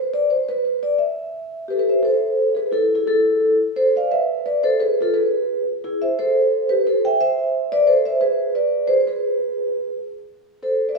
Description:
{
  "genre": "musette",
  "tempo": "174 BPM",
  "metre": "3/4",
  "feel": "swing 54% on 8ths",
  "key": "A harmonic minor",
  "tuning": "A4 = 440 Hz",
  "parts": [
    { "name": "vibraphone with soft mallets", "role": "solo", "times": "0.0-11.0 s", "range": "E4 to G5", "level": "-17 LUFS", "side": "equal", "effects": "none" }
  ],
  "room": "moderate recital hall reverb, RT60 1.5 s",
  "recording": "recorded in a church or concert hall, small room ambience",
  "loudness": "-17 LUFS",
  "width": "side -3 dB against mid",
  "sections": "0.0-2.0 A section; 2.0-11.0 B section",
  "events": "none",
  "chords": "0.0 E5; 2.0 Am; 6.2 Am7; 8.2 G#dim; 10.3 Am",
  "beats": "0.29 0.63 | 0.98 1.33 1.67 | 2.02 2.37 2.72 | 3.06 3.41 3.75 | 4.10 4.44 4.78 | 5.13 5.47 5.82 | 6.16 6.51 6.85 | 7.20 7.54 7.88 | 8.21 8.55 8.89 | 9.24 9.58 9.93 | 10.27 10.61 10.96"
}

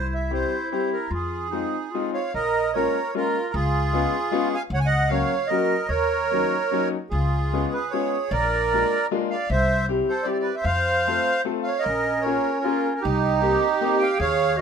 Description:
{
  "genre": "musette waltz",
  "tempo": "151 BPM",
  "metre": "3/4",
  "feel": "rubato",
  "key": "Bb minor",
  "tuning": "A4 = 440 Hz",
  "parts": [
    { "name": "accordion", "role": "melody", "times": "0.0-14.6 s", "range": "Eb4 to Ab5", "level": "-23 LUFS", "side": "right 3 dB", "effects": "light tremolo tuning" },
    { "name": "clear clarinet", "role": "second line", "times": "0.0-2.3, 11.8-14.6 s", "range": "Db4 to Ab4", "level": "-27 LUFS", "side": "right 2 dB", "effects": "none" },
    { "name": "upright bass", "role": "bass", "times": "0.0-14.6 s", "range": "Bb1 to F2", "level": "-26 LUFS", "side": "left 1 dB", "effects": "none" },
    { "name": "clear upright piano", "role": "accompaniment", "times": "0.3-14.6 s", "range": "Gb3 to A4", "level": "-26 LUFS", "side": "left 6 dB", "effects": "none" }
  ],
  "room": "moderate studio reverb, RT60 0.6 s",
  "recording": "minimal, uncompressed stereo recording",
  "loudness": "-21 LUFS",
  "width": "side -7 dB against mid",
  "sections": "0.0-2.3 A section; 2.3-14.6 B section",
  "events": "none",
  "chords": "0.0 C; 1.1 Fm7; 2.3 Bbm7; 3.5 Db7; 4.7 Gb/Db; 5.9 Ebm7; 7.1 Db7; 8.3 Bb7; 9.5 C; 10.7 F; 11.9 Bbm7; 13.0 Cm7",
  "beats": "0.30 0.70 | 1.10 1.50 1.91 | 2.33 2.73 3.13 | 3.53 3.92 4.31 | 4.71 5.10 5.50 | 5.90 6.30 6.71 | 7.13 7.53 7.93 | 8.32 8.72 9.11 | 9.50 9.88 10.26 | 10.66 11.06 11.46 | 11.86 12.26 12.65 | 13.04 13.43 13.81 | 14.20 14.58"
}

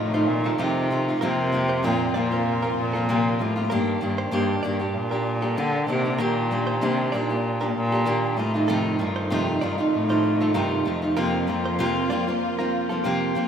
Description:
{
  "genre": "acoustic pop",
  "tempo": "96 BPM",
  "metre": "4/4",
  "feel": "swing 55% on 16ths",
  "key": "unclear",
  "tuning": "A4 = 439 Hz",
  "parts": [
    { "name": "warm cello", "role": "melody", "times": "0.0-13.0 s", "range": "F2 to D3", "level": "-25 LUFS", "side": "equal", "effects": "none" },
    { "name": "fingerpicked steel-string acoustic guitar", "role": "accompaniment", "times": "0.0-13.5 s", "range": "F2 to G4", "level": "-24 LUFS", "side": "right 1 dB", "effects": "none" },
    { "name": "warm studio string section", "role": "sustained chords", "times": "0.0-13.5 s", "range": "F2 to Bb4", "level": "-33 LUFS", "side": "left 2 dB", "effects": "none" },
    { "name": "direct-recorded clean electric guitar", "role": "arpeggios", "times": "0.1-13.5 s", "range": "G4 to D5", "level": "-35 LUFS", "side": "right 5 dB", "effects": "none" }
  ],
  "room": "moderate plate reverb, RT60 3.4 s",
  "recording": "rough home demo mix",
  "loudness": "-21 LUFS",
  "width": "side -8 dB against mid",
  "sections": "0.0-13.5 A section",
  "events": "none",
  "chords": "0.0 F7; 1.2 Bbsus2/F; 3.7 Ebmaj7; 8.4 F7; 11.2 Bbsus2/F",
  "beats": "0.59 | 1.21 1.83 2.46 3.08 | 3.70 4.32 4.95 5.57 | 6.19 6.82 7.44 8.06 | 8.68 9.30 9.93 10.55 | 11.17 11.79 12.41 13.04"
}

